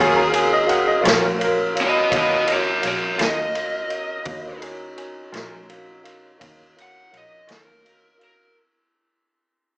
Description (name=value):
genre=slow blues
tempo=56 BPM (dotted quarters)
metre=12/8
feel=straight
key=Eb minor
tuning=A4 = 440 Hz
part: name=lead guitar through a small cranked amp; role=melody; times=0.0-8.6 s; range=Gb4 to Gb5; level=-21 LUFS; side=equal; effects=overdrive
part: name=bright upright piano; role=second line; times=0.0-1.8 s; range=Bb4 to Bb5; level=-21 LUFS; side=equal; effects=none
part: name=tine electric piano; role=accompaniment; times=0.0-8.5 s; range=Gb4 to Ab5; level=-25 LUFS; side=equal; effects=medium tremolo
part: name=twangy electric guitar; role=accompaniment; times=0.0-7.7 s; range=Eb3 to F4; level=-25 LUFS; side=equal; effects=tremolo
part: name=mellow tonewheel organ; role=sustained chords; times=0.0-8.5 s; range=D3 to F5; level=-31 LUFS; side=equal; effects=slow rotary speaker
part: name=clear double bass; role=bass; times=0.0-8.5 s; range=Bb1 to Eb2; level=-32 LUFS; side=equal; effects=none
part: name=vintage drum kit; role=drums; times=0.3-8.4 s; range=kick drum, ride cymbal, snare drum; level=-24 LUFS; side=equal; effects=none
room=moderate large studio reverb, RT60 1.1 s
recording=band playing live in one room, small speaker sound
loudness=-17 LUFS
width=side -29 dB against mid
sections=0.0-8.5 A section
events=fade-out 0.0-8.5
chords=0.0 Ebm9